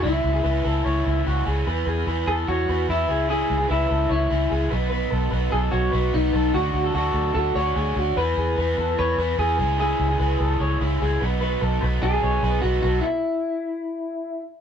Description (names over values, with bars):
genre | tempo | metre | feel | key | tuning
indie pop | 148 BPM | 4/4 | straight | unclear | A4 = 441 Hz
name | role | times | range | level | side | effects
electric guitar through a small old amp | melody | 0.0-14.4 s | D#4 to C#5 | -24 LUFS | left 1 dB | none
overdriven semi-hollow guitar | accompaniment | 0.0-13.1 s | B2 to G#4 | -29 LUFS | right 1 dB | none
electric guitar through a small old amp | arpeggios | 0.0-13.0 s | E4 to C#5 | -28 LUFS | right 1 dB | none
vintage muted fingered electric bass | bass | 0.0-13.0 s | B1 to E2 | -24 LUFS | equal | none
room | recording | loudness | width
moderate studio reverb, RT60 0.9 s | band playing live in one room | -20 LUFS | side -8 dB against mid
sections
0.0-1.7 A section; 1.7-14.6 B section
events
stop 13.0-14.6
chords
0.0 C#m; 1.7 E; 3.1 C#m; 4.7 B; 6.5 D; 8.2 E; 9.6 C#m; 11.2 B; 13.0 N.C.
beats
| 0.04 0.44 0.85 1.26 | 1.66 2.07 2.48 2.88 | 3.29 3.70 4.10 4.51 | 4.92 5.32 5.73 6.14 | 6.54 6.95 7.36 7.76 | 8.17 8.58 8.98 9.39 | 9.80 10.20 10.61 11.02 | 11.42 11.83 12.23 12.64 | 13.05 13.45 13.86 14.27